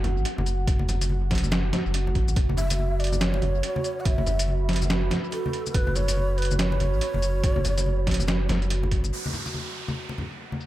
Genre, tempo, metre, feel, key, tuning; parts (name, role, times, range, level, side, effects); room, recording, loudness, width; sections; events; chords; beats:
deep dubstep; 142 BPM; 4/4; swing 61% on 16ths, half-time; F# minor; A4 = 439 Hz
deep dark ambient pad; sustained chords; 0.0-10.7 s; F#4 to B5; -33 LUFS; right 5 dB; chorus, built-in reverb
saturated sub bass; bass; 0.0-9.1 s; F#1 to A1; -25 LUFS; equal
trip hop sampler-style drum kit; drums; 0.0-10.7 s; hi-hat, shaker, snare drum; -29 LUFS; equal; overdrive, low-pass filter on hats, low-pass filter on perc, low-pass filter on snare, low-pass filter on room, tape echo
congas; percussion; 0.0-10.6 s; -32 LUFS; left 2 dB; dub echo
electronic kick drum; drums; 0.7-9.0 s; -25 LUFS; equal; overdrive
breathy mellow long shakuhachi; melody; 2.6-8.7 s; A4 to F#5; -31 LUFS; equal; dub echo
downlifter; sound effects; 9.1-10.7 s; -34 LUFS; right 2 dB
light reverb, digital ambience; echo-heavy mix; -22 LUFS; side -15 dB against mid
0.0-9.1 A section; 9.1-10.7 B section
0.0 F#5
0.25 | 0.68 1.10 1.52 1.94 | 2.37 2.79 3.21 3.63 | 4.06 4.48 4.90 5.32 | 5.75 6.17 6.59 7.01 | 7.44 7.86 8.28 8.70 | 9.13 9.55 9.97 10.39